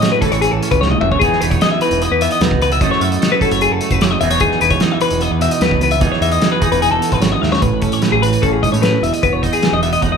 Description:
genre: math rock and midwest emo.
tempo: 150 BPM.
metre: 4/4.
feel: straight.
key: E major.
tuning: A4 = 439 Hz.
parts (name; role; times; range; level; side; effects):
twangy electric guitar; accompaniment; 0.0-10.2 s; E2 to A4; -19 LUFS; right 7 dB; none.
twelve-string electric guitar; arpeggios; 0.0-10.2 s; G#4 to F#5; -16 LUFS; left 5 dB; none.
loose indie drum kit; drums; 0.0-10.1 s; hi-hat, kick drum, snare drum, toms; -19 LUFS; right 1 dB; none.
growling picked electric bass; bass; 0.3-10.2 s; E1 to A2; -21 LUFS; equal; overdrive.
room: moderate large studio reverb, RT60 1.2 s.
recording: band playing live in one room.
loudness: -12 LUFS.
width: side -6 dB against mid.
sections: 0.0-7.6 A section; 7.6-10.2 B section.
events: drum fill 0.8-1.2, 7.4.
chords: 0.0 A6; 1.2 Emaj7; 2.8 F#m7; 4.2 Emaj7; 7.6 Amaj9; 9.0 Emaj7.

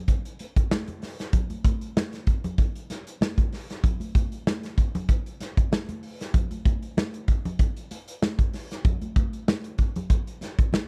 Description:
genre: pop.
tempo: 96 BPM.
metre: 4/4.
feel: swing 54% on 16ths.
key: none.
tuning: none.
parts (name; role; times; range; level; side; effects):
modern studio drum kit; drums; 0.1-10.9 s; hi-hat, kick drum, snare drum; -26 LUFS; equal; none.
congas; percussion; 0.1-10.9 s; none; -37 LUFS; equal; none.
room: little or no reverb.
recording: none.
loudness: -26 LUFS.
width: mono.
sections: 0.0-10.9 A section.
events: none.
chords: none.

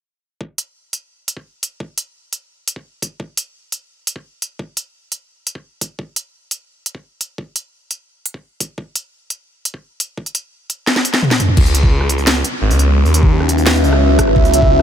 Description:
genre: half-time drum and bass.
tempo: 172 BPM.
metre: 4/4.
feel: half-time.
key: C# minor.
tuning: A4 = 440 Hz.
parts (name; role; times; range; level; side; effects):
electronic kick drum; drums; 0.4-14.7 s; none; -16 LUFS; equal; high-pass filter on kick.
drum and bass drum kit; drums; 0.6-14.8 s; crash cymbal, hi-hat, rim click, snare drum, toms; -17 LUFS; equal; none.
deep dark ambient pad; sustained chords; 12.7-14.8 s; C#4 to E5; -17 LUFS; equal; chorus, built-in reverb, vintage 12-bit sampler grit, sidechain pumping.
phased detuned saw bass; bass; 11.6-14.8 s; G#1 to D#2; -14 LUFS; equal; phaser, tube saturation.
room: light reverb.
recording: none.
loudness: -15 LUFS.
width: side -9 dB against mid.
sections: 0.4-11.6 A section; 11.6-14.8 B section.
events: drum fill 10.9-11.6; kick drops out 11.2-11.6; drop 11.6-14.8.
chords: 0.4 N.C.; 11.6 C#m.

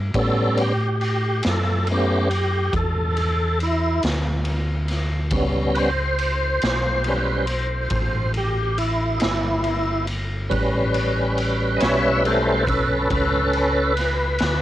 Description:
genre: slow blues.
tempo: 46 BPM (dotted quarters).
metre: 12/8.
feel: straight.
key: A mixolydian.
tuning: A4 = 441 Hz.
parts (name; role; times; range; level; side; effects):
fingered electric bass; bass; 0.0-14.6 s; G1 to A2; -24 LUFS; equal; none.
tonewheel organ; sustained chords; 0.1-14.6 s; G3 to E5; -21 LUFS; equal; slow rotary speaker, chorus vibrato, cassette tape.
raw garage drum kit; drums; 0.1-14.6 s; kick drum, ride cymbal, snare drum; -27 LUFS; equal; cassette tape.
room: little or no reverb.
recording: home recording on cassette.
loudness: -19 LUFS.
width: side -13 dB against mid.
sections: 0.0-14.6 A section.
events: tonewheel organ solo 0.0-14.6.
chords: 0.2 A7.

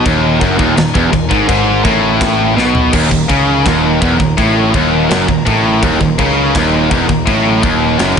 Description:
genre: heavy metal.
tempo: 166 BPM.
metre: 4/4.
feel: straight.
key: unclear.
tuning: A4 = 440 Hz.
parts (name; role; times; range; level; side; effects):
clear studio string section; sustained chords; 0.0-8.2 s; Gb3 to Bb4; -25 LUFS; left 2 dB; none.
distorted electric guitar; riff; 0.0-8.2 s; Eb2 to Db3; -15 LUFS; right 10 dB; distortion.
scooped high-gain guitar; riff; 0.0-8.2 s; Eb2 to Db3; -18 LUFS; equal; distortion.
tight distorted guitar; riff; 0.0-8.2 s; Eb2 to Db3; -15 LUFS; left 12 dB; distortion.
fuzz picked electric bass; bass; 0.0-8.2 s; Eb1 to Db2; -19 LUFS; equal; overdrive.
tight metal drum kit; drums; 0.1-8.2 s; china cymbal, crash cymbal, kick drum, snare drum, toms; -17 LUFS; equal; none.
room: light reverb.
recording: nothing above 10.5 kHz.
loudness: -10 LUFS.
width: side -6 dB against mid.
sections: 0.0-2.9 A section; 2.9-8.2 B section.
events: drum fill 2.6-2.9.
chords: 0.0 Ebm.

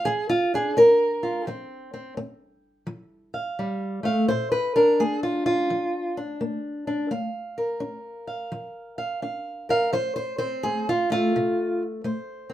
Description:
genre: acoustic country blues, solo or duo.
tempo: 85 BPM.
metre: 4/4.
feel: swing 65% on 8ths.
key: unclear.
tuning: A4 = 440 Hz.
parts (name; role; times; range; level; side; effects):
fingerpicked old ladder-braced acoustic guitar; solo; 0.0-12.5 s; Bb2 to F5; -22 LUFS; equal; none.
room: moderate studio reverb, RT60 0.6 s.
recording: minimal, uncompressed stereo recording.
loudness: -22 LUFS.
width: side -13 dB against mid.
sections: 0.0-12.5 A section.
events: steel-string acoustic guitar solo 0.0-12.5.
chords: 0.0 Bb; 1.5 F5; 4.3 Bb; 9.9 F.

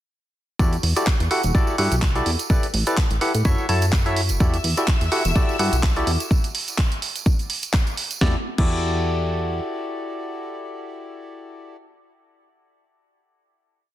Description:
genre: piano house.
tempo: 126 BPM.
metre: 4/4.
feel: swing 56% on 16ths.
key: E minor.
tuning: A4 = 441 Hz.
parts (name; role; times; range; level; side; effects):
percussive organ stab; riff; 0.6-11.8 s; E4 to A5; -25 LUFS; left 1 dB; chorus, sidechain pumping, dub echo.
plucky analog bass; bass; 0.6-9.6 s; E1 to A2; -22 LUFS; equal; sidechain pumping.
electronic kick drum; drums; 0.6-8.7 s; none; -20 LUFS; equal; none.
tambourine; percussion; 0.6-8.2 s; none; -34 LUFS; right 6 dB; none.
house drum kit; drums; 0.7-8.7 s; crash cymbal, handclaps, hi-hat, snare drum; -27 LUFS; right 2 dB; none.
warm symphonic string section; sustained chords; 4.4-6.3 s; E5 to E6; -30 LUFS; left 1 dB; sidechain pumping.
room: light reverb, digital ambience.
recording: dense, heavily limited modern master.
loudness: -19 LUFS.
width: side -13 dB against mid.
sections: 0.6-8.2 groove; 8.2-12.0 final chord.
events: none.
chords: 0.6 Em11; 2.5 A9sus4; 3.5 F#m7; 4.4 Em11; 6.3 N.C.; 8.2 Em11.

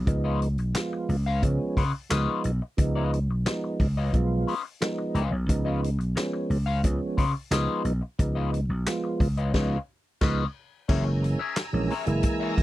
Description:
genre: funk.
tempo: 89 BPM.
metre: 4/4.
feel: straight.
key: Db mixolydian.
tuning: A4 = 438 Hz.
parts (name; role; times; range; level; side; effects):
vintage slap bass; bass; 0.0-12.6 s; Gb1 to Db3; -26 LUFS; equal; none.
electric guitar at the edge of break-up; accompaniment; 0.1-12.6 s; Db4 to F5; -31 LUFS; left 7 dB; wah.
mellow tonewheel organ; stabs; 0.1-12.6 s; Fb3 to F4; -29 LUFS; right 3 dB; chorus vibrato, slow rotary speaker.
vintage drum kit; drums; 0.1-12.6 s; crash cymbal, handclaps, hi-hat, kick drum, snare drum; -27 LUFS; equal; none.
string machine, violins; sustained chords; 10.9-12.6 s; Ab5 to Fb6; -36 LUFS; equal; ensemble chorus.
room: little or no reverb.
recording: dry, close 1970s-style studio recording.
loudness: -24 LUFS.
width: side -16 dB against mid.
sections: 0.0-10.9 A section; 10.9-12.6 B section.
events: band accent 9.5-10.9.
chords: 0.0 Db9; 10.9 Gb9.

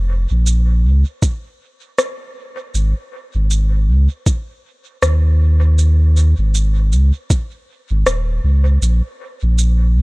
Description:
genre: ambient dub.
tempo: 79 BPM.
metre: 4/4.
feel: swing 59% on 16ths.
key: unclear.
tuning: A4 = 438 Hz.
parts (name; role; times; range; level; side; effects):
warm sub bass; bass; 0.0-10.0 s; Eb1 to Eb2; -12 LUFS; equal; none.
electronic shaker and rim click; drums; 0.5-9.8 s; none; -21 LUFS; equal; studio ambience, dub echo.
electronic kick drum; drums; 1.2-7.5 s; none; -15 LUFS; equal; studio ambience.
room: digital ambience.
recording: none.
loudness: -14 LUFS.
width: side -25 dB against mid.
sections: 0.0-10.0 A section.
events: none.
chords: none.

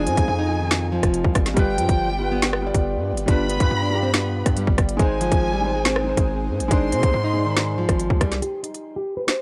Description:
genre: hip hop, drill.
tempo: 140 BPM.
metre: 4/4.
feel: half-time.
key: unclear.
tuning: A4 = 441 Hz.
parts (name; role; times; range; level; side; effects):
nylon-string guitar; melody; 0.0-9.4 s; Eb3 to C5; -29 LUFS; equal; low-pass filter.
warm chamber violin section; second line; 0.0-8.0 s; G5 to C6; -31 LUFS; equal; tape echo.
felt-muted upright piano; accompaniment; 0.0-8.4 s; F3 to D5; -29 LUFS; equal; low-pass filter.
airy breathy pad; sustained chords; 0.0-8.4 s; B3 to Ab5; -36 LUFS; equal; none.
hard-hitting 808-style bass; bass; 0.0-8.4 s; F1 to C3; -28 LUFS; equal; none.
drill drum kit; drums; 0.1-9.4 s; hi-hat, kick drum, rim click, snare drum; -22 LUFS; equal; vintage 12-bit sampler grit.
room: little or no reverb.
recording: dry, gritty hardware recording.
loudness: -21 LUFS.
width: mono.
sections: 0.0-8.4 A section.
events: break 8.4-9.4.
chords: 0.0 Fm7; 1.6 G7; 5.0 Ab; 8.4 N.C..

